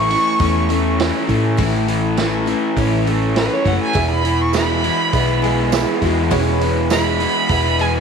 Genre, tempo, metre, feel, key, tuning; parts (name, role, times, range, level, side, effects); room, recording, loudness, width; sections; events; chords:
folk rock and heartland rock; 101 BPM; 4/4; straight; E major; A4 = 440 Hz
dark fiddle; melody; 0.0-8.0 s; B4 to C#6; -20 LUFS; right 2 dB
picked steel-string acoustic guitar; accompaniment; 0.0-8.0 s; E2 to E4; -24 LUFS; left 11 dB
raw garage guitar; riff; 0.0-8.0 s; E2 to C#4; -20 LUFS; right 2 dB; overdrive
hollow-body short-scale picked electric bass; bass; 0.0-8.0 s; E1 to A2; -20 LUFS; equal
vintage drum kit; drums; 0.1-7.9 s; hi-hat, kick drum, snare drum; -24 LUFS; right 4 dB
warm baby grand piano; accompaniment; 3.9-8.0 s; G#4 to E5; -26 LUFS; right 11 dB
tambourine; percussion; 4.5-7.0 s; -34 LUFS; right 15 dB
electric guitar through a small old amp; second line; 5.4-6.9 s; B3 to G#4; -25 LUFS; left 1 dB; analog chorus, tape echo
moderate echo chamber reverb, RT60 2.2 s; 1960s-style stereo with parts hard left and right; -15 LUFS; side -6 dB against mid
0.0-8.0 A section
fiddle solo 0.0-8.0
0.0 A; 4.0 E